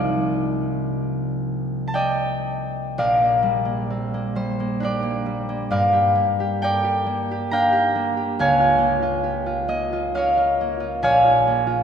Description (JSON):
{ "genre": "classical, solo harp piece", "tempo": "67 BPM", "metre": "3/4", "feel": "uneven beats, rubato", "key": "Bb major", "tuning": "A4 = 444 Hz", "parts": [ { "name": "concert harp", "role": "solo", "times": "0.0-11.8 s", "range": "Bb1 to Bb5", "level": "-19 LUFS", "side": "equal", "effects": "none" } ], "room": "wet church reverb, RT60 2.8 s", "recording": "none", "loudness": "-19 LUFS", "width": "side -8 dB against mid", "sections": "0.0-3.0 A section; 3.0-11.8 A section", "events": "none", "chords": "0.0 Cm11; 3.0 Bb6; 5.7 Gm7; 8.4 Db6; 11.0 Bbm7" }